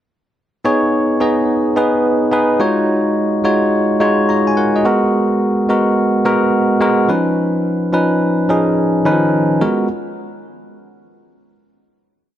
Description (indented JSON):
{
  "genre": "R&B",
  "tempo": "107 BPM",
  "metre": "4/4",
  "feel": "swing 67% on 16ths",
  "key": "G# dorian",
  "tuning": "A4 = 440 Hz",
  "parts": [
    { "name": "bell-like tine electric piano", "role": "solo", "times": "0.6-9.9 s", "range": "D#3 to A#5", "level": "-13 LUFS", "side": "equal", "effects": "none" }
  ],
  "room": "moderate lush hall reverb, RT60 2.8 s",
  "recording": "none",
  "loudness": "-13 LUFS",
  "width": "side -11 dB against mid",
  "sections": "0.6-9.6 verse; 9.6-11.9 final chord",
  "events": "none",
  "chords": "0.6 B69; 2.6 D#m11; 4.8 G#m9; 7.1 C#9; 9.6 G#m9"
}